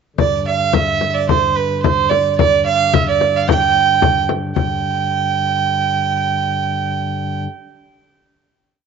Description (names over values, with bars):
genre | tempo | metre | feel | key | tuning
medieval dance | 111 BPM | 2/4 | straight | unclear | A4 = 435 Hz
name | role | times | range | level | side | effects
rich fiddle | melody | 0.2-7.4 s | B4 to G5 | -16 LUFS | right 9 dB | none
pipe organ, flutes | drone | 0.2-7.5 s | G2 to D3 | -23 LUFS | left 2 dB | none
frame drum | percussion | 0.2-4.8 s | none | -18 LUFS | left 8 dB | none
room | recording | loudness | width
moderate spring reverb, RT60 1.9 s, small room ambience | 1960s-style stereo with parts hard left and right, nothing above 7.9 kHz | -14 LUFS | side -6 dB against mid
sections
0.2-4.6 A section; 4.6-6.7 final chord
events
speeding up 0.2-6.7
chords
none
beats
| 0.18 0.74 | 1.29 1.84 | 2.40 2.94 | 3.49 4.03 | 4.56 5.10 | 5.62 6.15